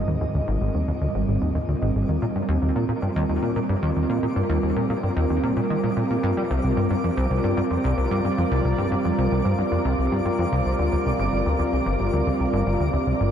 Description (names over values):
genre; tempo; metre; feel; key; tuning
ambient, sequencer-driven space music; 112 BPM; 4/4; straight; C minor; A4 = 439 Hz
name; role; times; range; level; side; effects
sweeping resonant pad; sustained chords; 0.0-13.3 s; Ab2 to Eb5; -24 LUFS; right 1 dB; chorus, shimmer reverb
plucky analog bass; riff; 0.0-13.3 s; G1 to G3; -23 LUFS; equal; wide subtle chorus, analog delay
twinkling granular texture; texture; 0.0-13.3 s; D6; -36 LUFS; right 1 dB; built-in reverb, shimmer reverb
room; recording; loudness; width
moderate huge ambient reverb, RT60 8.6 s; dark, warm production; -20 LUFS; side -9 dB against mid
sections
0.0-13.3 A section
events
fade-in on synth texture 0.0-13.3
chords
0.0 Ab; 2.2 Ebmaj7; 6.5 C5; 10.8 Gm7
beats
| 0.07 0.61 1.15 1.68 | 2.22 2.75 3.29 3.83 | 4.36 4.90 5.43 5.97 | 6.50 7.04 7.58 8.11 | 8.65 9.18 9.72 10.25 | 10.79 11.32 11.86 12.40 | 12.93